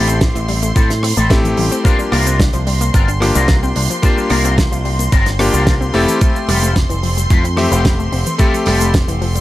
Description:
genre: nu-disco, nu disco.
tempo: 110 BPM.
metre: 4/4.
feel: straight.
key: unclear.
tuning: A4 = 440 Hz.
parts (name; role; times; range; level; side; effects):
clear electric grand piano; accompaniment; 0.0-9.4 s; A3 to E5; -20 LUFS; left 2 dB; sidechain pumping, tape echo.
string machine, full ensemble; sustained chords; 0.0-9.4 s; C6; -25 LUFS; equal; ensemble chorus, sidechain pumping.
wide unison pluck; arpeggios; 0.0-9.4 s; E3 to G4; -24 LUFS; left 2 dB; sidechain pumping, analog delay.
electric guitar with an envelope filter; riff; 0.0-9.2 s; C4 to C5; -23 LUFS; left 4 dB; analog chorus, tape echo.
picked electric bass with an envelope filter; bass; 0.0-9.4 s; F1 to A2; -17 LUFS; equal; tube saturation, sidechain pumping.
damped 70s drum kit; drums; 0.1-9.4 s; cabasa, hi-hat, rim click, snare drum; -21 LUFS; right 2 dB; studio reverb.
electronic kick drum; drums; 0.2-9.1 s; none; -14 LUFS; equal; studio reverb.
room: small room ambience.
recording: none.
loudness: -12 LUFS.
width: side -15 dB against mid.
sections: 0.0-9.4 A section.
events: none.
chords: 0.0 Am7; 1.9 C9sus4; 5.9 Fmaj9.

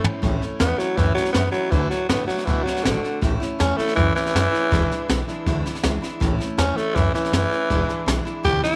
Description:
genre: rockabilly.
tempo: 161 BPM.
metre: 4/4.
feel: straight.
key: A major.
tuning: A4 = 442 Hz.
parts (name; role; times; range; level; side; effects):
growling tenor saxophone; melody; 0.0-8.8 s; D3 to G4; -25 LUFS; equal; tape echo.
picked steel-string acoustic guitar; accompaniment; 0.0-8.8 s; E2 to F#4; -30 LUFS; equal; none.
upright bass; bass; 0.0-8.7 s; E1 to B2; -27 LUFS; equal; none.
jazz brush drum kit; drums; 0.0-8.8 s; hi-hat, kick drum, snare drum, toms; -27 LUFS; equal; none.
room: light reverb, studio reverb.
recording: none.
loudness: -22 LUFS.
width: mono.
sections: 0.2-8.8 A section.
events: drum fill 0.0.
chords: 0.2 A; 1.7 D; 3.2 A; 4.7 E7; 6.2 A; 7.7 E7.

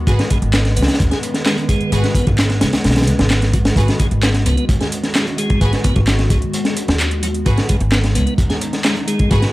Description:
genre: breakbeat, breaks.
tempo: 130 BPM.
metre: 4/4.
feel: straight.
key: G# minor.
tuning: A4 = 437 Hz.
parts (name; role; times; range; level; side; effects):
warbly tape-like pad; sustained chords; 0.0-9.5 s; D#3 to B4; -25 LUFS; equal; chorus, built-in reverb, phaser, sidechain pumping.
upright bass; bass; 0.0-9.4 s; G#1 to D#2; -17 LUFS; equal; none.
tonewheel organ; riff; 0.1-9.4 s; F#3 to G#4; -24 LUFS; equal; slow rotary speaker, vintage 12-bit sampler grit, analog delay.
clear studio string section; stabs; 0.1-9.4 s; F#4 to B4; -26 LUFS; right 1 dB; analog delay.
crunchy breakbeat drum kit; drums; 0.1-9.5 s; hi-hat, kick drum, snare drum; -17 LUFS; equal; none.
garage drum kit; drums; 0.1-9.5 s; handclaps, hi-hat; -24 LUFS; equal; overdrive.
room: small room ambience.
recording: dry, gritty hardware recording, vinyl crackle, faint mains hum.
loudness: -14 LUFS.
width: side -18 dB against mid.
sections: 0.0-9.5 A section.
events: none.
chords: 0.0 G#m7.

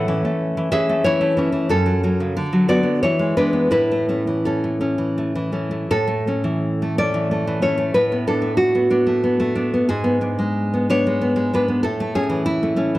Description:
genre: romantic piece for solo classical guitar.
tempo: 81-98 BPM.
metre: 3/4.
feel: rubato.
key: A major.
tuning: A4 = 439 Hz.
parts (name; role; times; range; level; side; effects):
nylon-string guitar; solo; 0.0-13.0 s; F#2 to F#5; -17 LUFS; equal; none.
room: moderate recital hall reverb, RT60 1.4 s.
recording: dark, warm production.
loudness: -17 LUFS.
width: side -17 dB against mid.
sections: 0.0-5.9 A section; 5.9-13.0 B section.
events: none.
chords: 0.0 A; 1.7 F#m; 2.4 D6; 3.0 E; 3.8 A; 7.9 Bm7/A; 9.9 G#dim; 11.8 A.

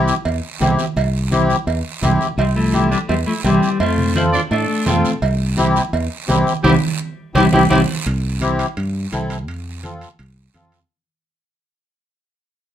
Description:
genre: latin, cumbia.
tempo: 169 BPM.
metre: 4/4.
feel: straight.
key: C major.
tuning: A4 = 437 Hz.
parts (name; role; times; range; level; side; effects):
accordion; accompaniment; 0.0-10.8 s; C4 to A4; -18 LUFS; left 3 dB; light tremolo tuning.
fingered electric bass; bass; 0.0-10.8 s; C2 to A2; -20 LUFS; equal; none.
guiro; percussion; 0.1-10.9 s; none; -31 LUFS; right 7 dB; none.
congas; percussion; 0.3-10.7 s; none; -22 LUFS; right 3 dB; none.
cowbell and timbales; percussion; 0.3-10.9 s; none; -25 LUFS; right 5 dB; none.
clean electric guitar; melody; 2.4-7.8 s; E3 to F4; -20 LUFS; left 4 dB; spring reverb.
clear trumpet; second line; 2.4-7.8 s; C4 to D5; -24 LUFS; right 3 dB; none.
room: wet studio ambience, RT60 0.5 s.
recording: minimal, uncompressed stereo recording.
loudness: -15 LUFS.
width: side -10 dB against mid.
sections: 0.0-8.1 A section; 8.1-10.9 B section.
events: band accent 6.6-8.1; fade-out 8.1-10.9.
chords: 0.0 C; 3.8 F; 5.2 C; 9.5 F.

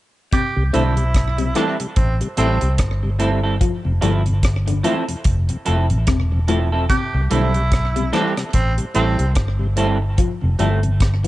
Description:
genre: roots reggae.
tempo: 73 BPM.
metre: 4/4.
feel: swing 58% on 16ths.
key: C major.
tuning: A4 = 440 Hz.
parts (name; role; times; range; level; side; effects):
raspy tenor saxophone; second line; 0.3-9.3 s; C4 to G4; -24 LUFS; right 3 dB; dub echo.
electric guitar through a small old amp; arpeggios; 0.3-11.3 s; A2 to G3; -26 LUFS; left 7 dB; none.
deep reggae drum kit; drums; 0.3-11.3 s; hi-hat, kick drum, rim click; -20 LUFS; equal; none.
mellow tonewheel organ; accompaniment; 0.6-11.3 s; F2 to E4; -26 LUFS; left 2 dB; slow rotary speaker.
vintage muted fingered electric bass; bass; 0.6-11.3 s; E1 to C2; -19 LUFS; equal; none.
semi-hollow electric guitar; accompaniment; 0.7-10.8 s; F3 to A4; -24 LUFS; right 3 dB; lush chorus, dub echo.
room: studio reverb.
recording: nothing above 10.8 kHz.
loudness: -16 LUFS.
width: side -16 dB against mid.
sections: 0.3-11.3 A section.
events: none.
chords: 0.3 C6; 3.6 Fmaj7; 6.9 C6; 10.2 Fmaj7.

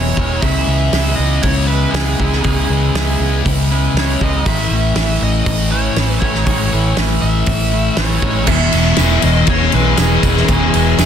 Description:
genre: rock, shoegaze and dream pop.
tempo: 119 BPM.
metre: 4/4.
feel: straight.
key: E major.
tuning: A4 = 436 Hz.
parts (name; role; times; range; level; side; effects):
biting lead guitar; melody; 0.0-11.1 s; G#4 to E5; -22 LUFS; right 1 dB; overdrive, slapback echo.
electric guitar through a small old amp; riff; 0.0-11.1 s; E2 to E4; -22 LUFS; right 13 dB; reverse reverb.
thick fuzz guitar; riff; 0.0-11.1 s; E2 to C#4; -19 LUFS; left 10 dB; distortion, wide subtle chorus.
vintage muted fingered electric bass; bass; 0.0-11.1 s; E1 to C#2; -17 LUFS; equal; none.
loose indie drum kit; drums; 0.2-11.1 s; crash cymbal, hi-hat, kick drum, ride cymbal, snare drum; -18 LUFS; equal; none.
glassy FM pad; sustained chords; 8.8-11.1 s; C#4 to E5; -26 LUFS; left 2 dB; ensemble chorus, built-in reverb.
tambourine; percussion; 8.5-11.1 s; none; -30 LUFS; right 13 dB; none.
room: small room ambience.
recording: dense, heavily limited modern master.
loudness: -12 LUFS.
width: side -8 dB against mid.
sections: 0.0-8.5 A section; 8.5-11.1 A section.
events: none.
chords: 0.4 C#m7; 4.5 A; 8.5 E6.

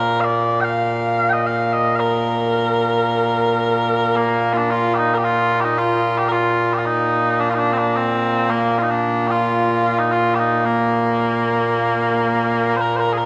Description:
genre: scottish traditional, Scottish pipe music.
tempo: 111 BPM.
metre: 4/4.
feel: straight.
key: Bb major.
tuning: A4 = 440 Hz.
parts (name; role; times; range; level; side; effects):
mellow small bagpipes; solo; 0.0-13.3 s; Bb2 to G5; -18 LUFS; equal; none.
room: moderate concert hall reverb, RT60 2.2 s.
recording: lossy compression artefacts.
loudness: -18 LUFS.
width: mono.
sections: 0.0-4.2 A section; 4.2-12.8 A section.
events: none.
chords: none.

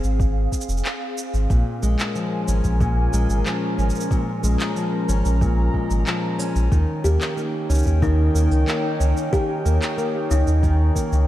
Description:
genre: folktronica.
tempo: 92 BPM.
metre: 4/4.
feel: straight.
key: unclear.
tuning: A4 = 440 Hz.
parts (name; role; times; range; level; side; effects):
warbly tape-like pad; sustained chords; 0.0-11.3 s; C4 to Bb5; -28 LUFS; equal; chorus, built-in reverb, phaser.
warm sub bass; bass; 0.0-11.3 s; F1 to Eb2; -19 LUFS; equal; none.
electronic shaker and handclaps; drums; 0.0-11.3 s; none; -31 LUFS; equal; small room ambience.
electronic kick drum; drums; 0.2-11.1 s; none; -23 LUFS; equal; small room ambience.
fingerpicked plugged-in steel-string acoustic guitar; arpeggios; 1.5-11.3 s; Bb2 to Db4; -24 LUFS; left 1 dB; diffuse ambient delay.
kalimba; second line; 7.0-10.6 s; Eb4 to G4; -28 LUFS; equal; tape echo.
room: light reverb.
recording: none.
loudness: -18 LUFS.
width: side -14 dB against mid.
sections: 0.0-11.3 A section.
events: none.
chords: 0.0 Ab6; 1.5 Bbm7; 6.7 Eb7.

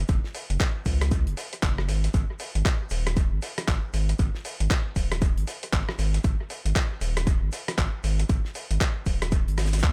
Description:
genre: deep house.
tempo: 117 BPM.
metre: 4/4.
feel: swing 60% on 16ths.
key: unclear.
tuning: A4 = 440 Hz.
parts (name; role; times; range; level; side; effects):
round analog bass; bass; 0.0-9.9 s; D#1 to D#2; -28 LUFS; equal; sidechain pumping.
damped 70s drum kit; drums; 0.1-9.9 s; hi-hat, shaker, snare drum; -44 LUFS; equal; none.
dusty soul sampler-style drum kit; drums; 0.1-9.9 s; handclaps, hi-hat, rim click; -34 LUFS; equal; studio reverb, dub echo.
electronic kick drum; drums; 0.1-9.9 s; none; -27 LUFS; equal; studio reverb.
room: studio reverb.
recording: echo-heavy mix.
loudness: -26 LUFS.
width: mono.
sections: 0.0-9.9 A section.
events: none.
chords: none.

